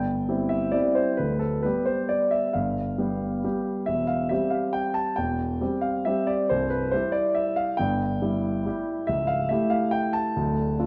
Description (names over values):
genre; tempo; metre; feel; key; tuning
classical, piano waltz; 137 BPM; 3/4; uneven beats, rubato; C major; A4 = 440 Hz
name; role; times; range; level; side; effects
clear concert grand piano; solo; 0.0-10.9 s; C1 to A5; -26 LUFS; equal; none
room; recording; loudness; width
wet recital hall reverb, RT60 1.7 s; dark, warm production; -26 LUFS; mono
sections
0.0-10.9 A section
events
none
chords
0.0 C; 1.2 G7/D; 3.9 C/E; 6.5 C; 9.1 A7/C#